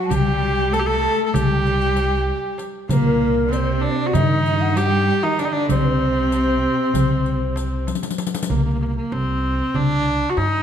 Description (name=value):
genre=Turkish makam ensemble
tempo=193 BPM (eighths)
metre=9/8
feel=straight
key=C makam nikriz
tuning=A4 = 440 Hz
part: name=bright viola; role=melody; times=0.0-10.6 s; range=Bb3 to A4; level=-22 LUFS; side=right 1 dB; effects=none
part: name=breathy mellow ney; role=second line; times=0.0-7.9 s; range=Bb4 to Bb5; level=-26 LUFS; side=left 4 dB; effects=none
part: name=clear studio cello section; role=second line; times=0.0-7.9 s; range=Bb2 to A3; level=-25 LUFS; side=right 2 dB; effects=none
part: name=upright bass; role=bass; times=0.1-10.6 s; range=C2 to G2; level=-23 LUFS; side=equal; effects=none
part: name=darbuka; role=percussion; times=0.1-10.5 s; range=none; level=-24 LUFS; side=equal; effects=none
part: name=riq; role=percussion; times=0.1-8.5 s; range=none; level=-30 LUFS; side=left 6 dB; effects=none
room=wet scoring stage reverb, RT60 1.5 s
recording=dark, warm production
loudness=-17 LUFS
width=side -8 dB against mid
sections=0.0-8.5 A section; 8.5-10.6 B section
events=drum fill 7.9-8.5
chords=none